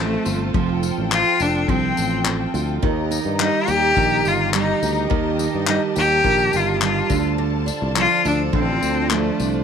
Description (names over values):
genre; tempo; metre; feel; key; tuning
acoustic pop; 105 BPM; 4/4; straight; unclear; A4 = 440 Hz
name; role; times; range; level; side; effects
clear cello; melody; 0.0-9.5 s; A3 to G4; -20 LUFS; left 3 dB; none
picked steel-string acoustic guitar; accompaniment; 0.0-9.6 s; D3 to A4; -24 LUFS; right 11 dB; none
warm studio string section; sustained chords; 0.0-9.6 s; F4 to Bb5; -28 LUFS; left 3 dB; none
sustaining fretless electric bass; bass; 0.0-9.6 s; F1 to G2; -24 LUFS; left 2 dB; none
unplugged drum kit; drums; 0.3-9.5 s; handclaps, kick drum, tambourine; -25 LUFS; left 4 dB; none
room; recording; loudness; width
light reverb, small room ambience; 1960s-style stereo; -17 LUFS; side -7 dB against mid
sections
0.0-9.6 A section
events
none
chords
0.0 F; 2.8 Eb; 7.1 Dm7